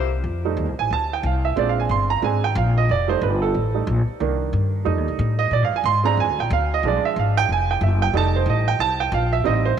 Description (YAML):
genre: jazz, big band swing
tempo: 182 BPM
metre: 4/4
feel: swing 62% on 8ths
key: F mixolydian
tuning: A4 = 439 Hz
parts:
  - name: upright bass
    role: bass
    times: 0.0-9.8 s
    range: F1 to Bb2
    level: -21 LUFS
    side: left 1 dB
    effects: none
  - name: clear baby grand piano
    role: accompaniment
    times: 0.4-9.7 s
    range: Eb3 to C6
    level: -21 LUFS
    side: right 9 dB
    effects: none
room: moderate plate reverb, RT60 3.6 s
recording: 1960s-style stereo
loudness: -18 LUFS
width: side -8 dB against mid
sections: 0.2-9.8 A section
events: grand piano solo 0.2-9.8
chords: 0.2 F7; 1.6 Bb7; 2.9 F7; 4.2 Cm7; 4.9 F7; 5.5 Bb7; 6.8 Bdim7; 8.1 F7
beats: | 0.25 0.58 0.91 1.24 | 1.57 1.90 2.23 2.56 | 2.88 3.21 3.54 3.87 | 4.20 4.53 4.86 5.19 | 5.51 5.84 6.17 6.50 | 6.83 7.16 7.49 7.81 | 8.14 8.47 8.80 9.13 | 9.46 9.78